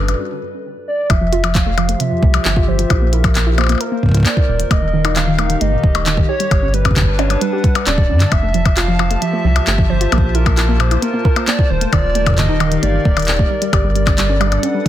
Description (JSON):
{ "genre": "IDM", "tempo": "133 BPM", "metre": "4/4", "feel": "straight", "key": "F major", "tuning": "A4 = 439 Hz", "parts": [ { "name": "warbly nostalgic lead", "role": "melody", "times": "0.0-14.9 s", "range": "Bb4 to F5", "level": "-22 LUFS", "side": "right 1 dB", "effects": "chorus, ping-pong delay" }, { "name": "hollow soft pad", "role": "sustained chords", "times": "0.0-14.9 s", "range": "Eb3 to A5", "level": "-24 LUFS", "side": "left 2 dB", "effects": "chorus" }, { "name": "soft round pluck", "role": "arpeggios", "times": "0.0-14.9 s", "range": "Eb2 to Bb4", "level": "-21 LUFS", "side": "right 2 dB", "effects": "chorus, ping-pong delay" }, { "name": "warm sub bass", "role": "bass", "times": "0.0-14.6 s", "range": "D1 to G2", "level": "-17 LUFS", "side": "equal", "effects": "none" }, { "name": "glitchy drum kit", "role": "drums", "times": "0.1-14.9 s", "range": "handclaps, hi-hat, percussion blips", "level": "-20 LUFS", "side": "left 4 dB", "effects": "none" }, { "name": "electronic kick drum", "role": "drums", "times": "1.1-14.9 s", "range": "none", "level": "-15 LUFS", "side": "equal", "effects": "none" } ], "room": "digital ambience", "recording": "dense, heavily limited modern master", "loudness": "-13 LUFS", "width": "side -12 dB against mid", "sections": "0.0-1.1 A section; 1.1-14.9 B section", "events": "break 0.2-1.1", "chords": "0.0 Gmaj9; 1.1 Fmaj9; 2.9 Bbsus2; 4.5 Ebadd9; 6.3 Gmaj9; 8.3 Fmaj9; 10.1 Bbsus2; 11.7 Ebmaj9; 13.5 Gmaj9" }